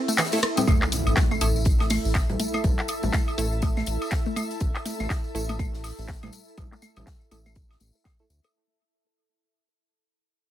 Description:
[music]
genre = minimal techno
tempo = 122 BPM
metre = 4/4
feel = swing 59% on 16ths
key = unclear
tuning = A4 = 440 Hz
[part]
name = ethereal airy pad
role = texture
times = 0.0-8.5 s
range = E4 to A5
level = -34 LUFS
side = right 1 dB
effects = ensemble chorus, built-in reverb, sidechain pumping
[part]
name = hollow square pluck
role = riff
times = 0.1-8.5 s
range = E3 to A4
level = -29 LUFS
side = equal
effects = chorus, sidechain pumping, ping-pong delay
[part]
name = house drum kit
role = drums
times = 0.1-8.4 s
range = handclaps, hi-hat, ride cymbal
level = -28 LUFS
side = left 1 dB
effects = low-pass filter on snare, low-pass filter on hats, low-pass filter on cymbals
[part]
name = tambourine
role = percussion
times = 0.1-8.5 s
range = none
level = -37 LUFS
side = left 3 dB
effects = none
[part]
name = crisp fusion drum kit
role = drums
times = 0.2-8.5 s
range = hi-hat, snare drum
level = -39 LUFS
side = left 2 dB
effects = sidechain pumping on hats, high-pass filter on hats, high-pass filter on snare, high-pass filter on room
[part]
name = electronic claves, woodblock, rim click and congas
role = percussion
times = 0.2-8.5 s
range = none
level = -31 LUFS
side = equal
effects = dub echo
[part]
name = wavetable chord stab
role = stabs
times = 0.3-8.3 s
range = A3 to A4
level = -31 LUFS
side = right 1 dB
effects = dub echo
[part]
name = round analog bass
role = bass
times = 0.7-8.4 s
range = A1 to D2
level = -28 LUFS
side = equal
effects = sidechain pumping
[part]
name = electronic kick drum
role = drums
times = 0.7-8.2 s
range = none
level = -24 LUFS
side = equal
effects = none
[part]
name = impact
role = sound effects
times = 0.7-2.6 s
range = none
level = -32 LUFS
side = equal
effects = none
[part]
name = bubbling stepped-filter texture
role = texture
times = 1.4-8.6 s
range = E5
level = -42 LUFS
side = left 1 dB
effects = chorus, built-in reverb, sidechain pumping
[sound]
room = light reverb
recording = none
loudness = -22 LUFS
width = side -12 dB against mid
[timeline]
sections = 0.7-8.5 A section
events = break 0.0-0.7; fade-out 0.7-8.5; impact 0.7-2.6; filter sweep on drum 0.7-8.5; filter sweep on synth arpeggio sound 0.7-8.5; filter sweep on synth stab 0.7-8.5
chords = 0.0 A5

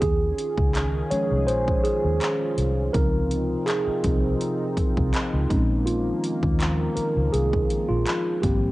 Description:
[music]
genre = contemporary R&B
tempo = 82 BPM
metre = 4/4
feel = swing 54% on 16ths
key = unclear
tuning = A4 = 440 Hz
[part]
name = mellow tine electric piano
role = accompaniment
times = 0.0-8.7 s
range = F3 to Db5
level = -25 LUFS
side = right 1 dB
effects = slow stereo tremolo, cassette tape
[part]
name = chorused pulse-width pad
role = sustained chords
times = 0.0-8.7 s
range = C3 to Ab4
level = -30 LUFS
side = left 1 dB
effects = cassette tape
[part]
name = vintage muted fingered electric bass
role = bass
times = 0.0-8.7 s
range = Ab1 to Eb2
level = -25 LUFS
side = equal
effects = none
[part]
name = pop drum kit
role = drums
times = 0.0-8.6 s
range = handclaps, hi-hat, kick drum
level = -26 LUFS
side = equal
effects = vintage 12-bit sampler grit
[sound]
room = light reverb, digital ambience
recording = home recording on cassette, nothing above 11.0 kHz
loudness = -21 LUFS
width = side -18 dB against mid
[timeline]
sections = 0.0-8.7 A section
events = tine electric piano solo 0.0-8.7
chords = 0.0 Eb9sus4; 2.9 Dbmaj9; 5.5 Bbm11

